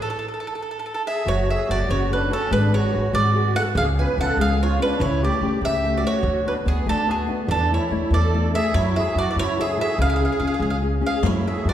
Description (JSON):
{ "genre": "italian folk, Italian serenade", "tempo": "96 BPM (dotted quarters)", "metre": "6/8", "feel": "straight", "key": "F# minor", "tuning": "A4 = 441 Hz", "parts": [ { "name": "bowl-back mandolin", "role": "melody", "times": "0.0-11.7 s", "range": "G#4 to G#5", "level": "-24 LUFS", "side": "right 2 dB", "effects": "none" }, { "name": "musette accordion", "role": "second line", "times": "1.1-11.7 s", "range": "B3 to B4", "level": "-28 LUFS", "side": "right 3 dB", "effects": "none" }, { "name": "flamenco guitar", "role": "accompaniment", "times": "1.3-11.7 s", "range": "B2 to C#5", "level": "-25 LUFS", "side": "left 4 dB", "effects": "none" }, { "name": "upright bass", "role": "bass", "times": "1.3-11.7 s", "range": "F#1 to F#2", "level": "-23 LUFS", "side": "equal", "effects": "none" }, { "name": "riq", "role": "percussion", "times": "11.2-11.4 s", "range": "none", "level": "-26 LUFS", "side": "left 2 dB", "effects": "none" } ], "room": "wet recital hall reverb, RT60 1.8 s", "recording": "heard from further back in the room", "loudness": "-19 LUFS", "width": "side -10 dB against mid", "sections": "0.0-1.3 A section; 1.3-11.7 B section", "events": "stop 0.0-1.3", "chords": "0.0 N.C.; 1.3 F#m; 2.5 G#m7b5; 3.8 C#7; 5.0 A7/C#; 6.2 D6; 7.5 E7sus4; 8.7 F#m7; 10.0 C#; 11.2 F#m7", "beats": "| 0.01 0.64 | 1.27 1.89 | 2.52 3.14 | 3.76 4.38 | 5.00 5.62 | 6.24 6.87 | 7.50 8.12 | 8.74 9.36 | 9.98 10.60 | 11.23" }